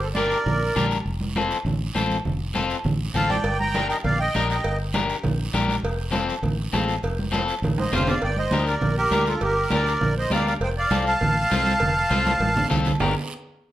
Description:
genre	latin, cumbia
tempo	201 BPM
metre	4/4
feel	straight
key	G minor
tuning	A4 = 439 Hz
part	accordion	melody	0.0-0.9, 3.1-4.8, 7.8-13.1 s	F4 to Bb5	-23 LUFS	right 1 dB	light tremolo tuning
part	fingered electric bass	bass	0.0-13.1 s	F1 to D2	-26 LUFS	equal	none
part	congas	percussion	0.1-13.1 s	none	-27 LUFS	right 2 dB	none
part	electric guitar at the edge of break-up	accompaniment	0.2-13.1 s	C4 to C5	-26 LUFS	left 5 dB	none
part	guiro	percussion	0.2-13.1 s	none	-37 LUFS	right 5 dB	none
part	cowbell and timbales	percussion	3.4-13.1 s	none	-33 LUFS	right 2 dB	none
room	moderate large studio reverb, RT60 0.8 s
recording	dark, warm production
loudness	-20 LUFS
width	side -13 dB against mid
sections	0.0-8.2 A section; 8.2-13.0 B section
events	drum fill 7.8-8.2, 12.1-13.0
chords	0.0 Gm; 1.1 F; 3.4 Gm; 5.8 F; 8.2 Gm; 10.6 F; 13.0 Gm

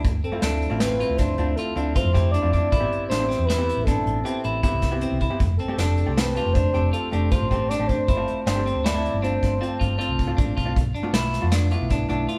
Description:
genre	progressive instrumental, band music in an uneven meter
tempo	157 BPM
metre	7/4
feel	straight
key	D dorian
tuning	A4 = 440 Hz
part	hollow-body short-scale fingered electric bass	bass	0.0-12.3 s	F1 to F2	-27 LUFS	equal	none
part	vintage brush drum kit	drums	0.0-12.4 s	hi-hat, kick drum, snare drum	-28 LUFS	equal	none
part	expressive synth lead	melody	0.2-10.4 s	A4 to D5	-30 LUFS	equal	chorus
part	clean electric guitar	arpeggios	0.2-12.4 s	C4 to F4	-32 LUFS	equal	none
part	vintage hollow-body jazz guitar	accompaniment	0.3-12.4 s	A3 to A4	-31 LUFS	equal	none
room	moderate stone room reverb, RT60 1.1 s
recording	band playing live in one room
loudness	-23 LUFS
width	mono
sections	0.0-12.4 A section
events	none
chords	0.0 Dm7; 2.7 Am7; 5.4 F6; 8.1 G7sus4; 10.8 Bm7b5

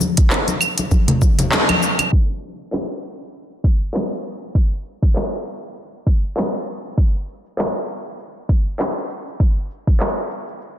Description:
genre	downtempo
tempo	99 BPM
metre	4/4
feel	swing 56% on 16ths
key	none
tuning	none
part	organic electronic drum kit	drums	0.0-10.8 s	claves, handclaps, hi-hat, shaker	-21 LUFS	equal	overdrive
part	congas	percussion	0.0-2.1 s	none	-21 LUFS	left 2 dB	none
part	electronic kick drum	drums	0.2-10.0 s	none	-16 LUFS	equal	overdrive
room	moderate scoring stage reverb, RT60 1.9 s, digital ambience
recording	dense, heavily limited modern master, low-pass filter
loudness	-17 LUFS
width	side -11 dB against mid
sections	0.0-2.1 A section; 2.1-10.8 B section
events	band accent 1.5-1.8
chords	none

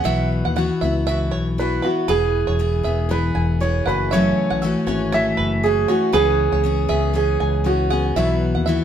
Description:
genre	pop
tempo	118 BPM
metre	4/4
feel	swing 55% on 16ths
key	E major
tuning	A4 = 440 Hz
part	warm upright piano	melody	0.0-8.8 s	E4 to F#5	-21 LUFS	right 4 dB	none
part	picked steel-string acoustic guitar	accompaniment	0.0-8.8 s	F#2 to G#4	-22 LUFS	left 3 dB	none
part	fingered electric bass	bass	0.0-8.8 s	E1 to D#2	-22 LUFS	left 1 dB	none
part	bluegrass banjo	arpeggios	0.1-8.8 s	B4 to G#5	-28 LUFS	right 4 dB	none
room	moderate stone room reverb, RT60 1.1 s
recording	band playing live in one room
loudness	-17 LUFS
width	side -9 dB against mid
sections	0.0-8.8 A section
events	none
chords	0.1 Bsus4; 2.1 E; 3.9 F#m7; 6.1 C#m7; 8.2 Bsus4

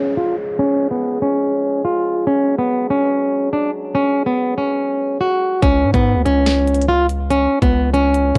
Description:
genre	hip hop, drill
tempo	143 BPM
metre	4/4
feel	half-time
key	unclear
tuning	A4 = 440 Hz
part	flamenco guitar	melody	0.0-8.4 s	B3 to F#4	-19 LUFS	equal	low-pass filter, cassette tape
part	dark French horn section	sustained chords	0.0-5.6 s	E#3 to G#4	-27 LUFS	equal	low-pass filter, cassette tape
part	downlifter	sound effects	0.0-2.3 s	none	-42 LUFS	equal	none
part	hard-hitting 808-style bass	bass	5.6-8.4 s	C#2 to G#2	-21 LUFS	equal	none
part	drill drum kit	drums	5.6-8.4 s	hi-hat, kick drum, snare drum	-21 LUFS	equal	cassette tape
room	light reverb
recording	home recording on cassette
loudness	-17 LUFS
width	mono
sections	0.0-5.6 A section; 5.6-8.4 B section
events	filter sweep 0.0-5.6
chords	0.0 C#; 2.3 F#sus2; 5.6 N.C.

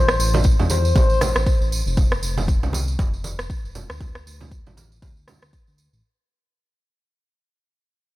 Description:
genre	afro house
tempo	118 BPM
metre	4/4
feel	swing 58% on 16ths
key	unclear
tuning	A4 = 442 Hz
part	expressive synth lead	melody	0.0-1.7 s	C5	-26 LUFS	left 3 dB	lush chorus, tape echo
part	smooth synth bass	bass	0.0-6.0 s	F1 to E2	-23 LUFS	equal	sidechain pumping
part	electronic rim click	drums	0.1-5.5 s	none	-25 LUFS	equal	none
part	tambourine	percussion	0.1-6.0 s	none	-32 LUFS	right 4 dB	none
part	congas	percussion	0.3-5.4 s	none	-28 LUFS	right 3 dB	none
part	electronic kick drum	drums	0.4-5.6 s	none	-19 LUFS	equal	none
room	digital ambience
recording	none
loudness	-17 LUFS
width	side -17 dB against mid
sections	0.0-6.0 A section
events	fade-out 0.0-6.0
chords	0.0 Am; 2.0 F5; 4.0 D5

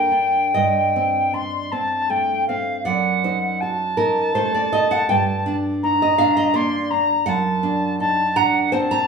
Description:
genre	romantic duo for recorder and classical guitar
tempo	68-84 BPM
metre	3/4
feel	rubato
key	G minor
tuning	A4 = 440 Hz
part	mellow alto recorder	melody	0.0-9.1 s	F5 to C6	-20 LUFS	equal	none
part	nylon-string guitar	accompaniment	0.0-9.1 s	F#2 to Bb5	-21 LUFS	right 2 dB	none
room	moderate studio reverb, RT60 0.7 s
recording	band playing live in one room, small room reverb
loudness	-17 LUFS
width	side -5 dB against mid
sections	0.0-9.1 A section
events	none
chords	0.0 Gm; 0.5 Am7b5/G; 2.9 F#dim7; 5.1 Gm; 7.3 D7/F#

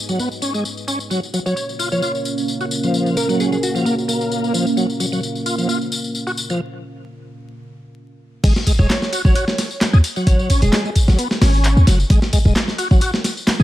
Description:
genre	breakbeat, breaks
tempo	131 BPM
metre	4/4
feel	swing 54% on 16ths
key	unclear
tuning	A4 = 440 Hz
part	dark analog pad	sustained chords	0.0-8.4 s	G#3 to E#5	-23 LUFS	right 2 dB	chorus, phaser, sidechain pumping
part	overdriven tonewheel organ	riff	0.1-13.6 s	E#3 to G#4	-23 LUFS	equal	chorus vibrato, slow rotary speaker, vintage 12-bit sampler grit, ping-pong delay
part	house drum kit	drums	0.1-13.6 s	handclaps, ride cymbal, tambourine	-26 LUFS	left 2 dB	none
part	glassy wavetable pluck	melody	1.5-4.0, 8.8-10.8 s	F#4 to C#5	-26 LUFS	right 1 dB	chorus, AM radio sound, ping-pong delay
part	warm 808-style bass	bass	8.4-13.6 s	D#1 to D#2	-13 LUFS	equal	none
part	breakbeat sampler-style drum kit	drums	8.4-13.6 s	crash cymbal, hi-hat, kick drum, snare drum	-17 LUFS	equal	none
room	little or no reverb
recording	vinyl crackle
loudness	-16 LUFS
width	side -14 dB against mid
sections	0.0-8.4 A section; 8.4-13.6 B section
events	break 6.6-8.4; drop 8.4-13.6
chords	0.0 G#m; 1.1 F#maj7; 8.4 N.C.

